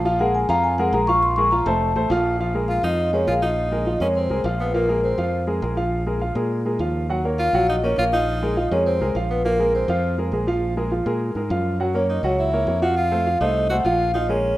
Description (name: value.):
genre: jazz.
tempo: 204 BPM.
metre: 4/4.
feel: straight.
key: Bb minor.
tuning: A4 = 440 Hz.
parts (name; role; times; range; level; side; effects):
modern bright fingered electric bass; bass; 0.0-14.5 s; F1 to Bb2; -25 LUFS; equal; none.
vibraphone with soft mallets; melody; 0.1-14.6 s; Bb4 to Db6; -22 LUFS; left 1 dB; none.
warm baby grand piano; accompaniment; 0.1-14.5 s; F3 to Gb5; -23 LUFS; equal; none.
clear tenor saxophone; second line; 2.7-14.6 s; Bb3 to Gb4; -29 LUFS; right 2 dB; none.
room: light reverb, small room reverb.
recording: rough home demo mix.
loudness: -19 LUFS.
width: side -16 dB against mid.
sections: 0.0-2.4 A section; 2.4-14.6 B section.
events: vibraphone solo 0.0-2.4.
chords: 0.1 Bb5; 1.8 F; 2.4 Bbsus2; 7.1 Ebm9; 8.3 Bbsus2; 11.8 Gb7; 13.0 F7.